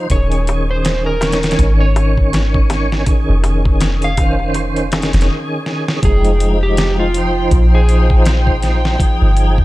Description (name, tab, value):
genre	trip hop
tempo	81 BPM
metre	4/4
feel	swing 58% on 16ths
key	F minor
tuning	A4 = 440 Hz
part	tonewheel organ	accompaniment	0.0-9.6 s	Eb3 to Db5	-19 LUFS	equal	overdrive, chorus vibrato, slow rotary speaker, tremolo, tape echo
part	electric slide guitar	melody	0.1-8.2 s	F4 to F5	-22 LUFS	right 1 dB	tape echo
part	soft 808-style bass	bass	0.1-9.6 s	Eb1 to Bb1	-15 LUFS	equal	none
part	dusty soul sampler-style drum kit	drums	0.1-9.6 s	hi-hat, kick drum, snare drum	-17 LUFS	equal	studio reverb
part	darbuka	percussion	0.1-5.3 s	none	-28 LUFS	left 4 dB	none
part	warm studio string section	sustained chords	6.0-9.6 s	G5	-25 LUFS	left 1 dB	none
room	digital ambience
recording	dark, warm production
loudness	-12 LUFS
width	side -18 dB against mid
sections	0.0-6.0 A section; 6.0-9.6 B section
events	break 5.3-6.0; drum fill 5.7-6.0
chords	0.1 Eb7sus4; 6.0 Fm7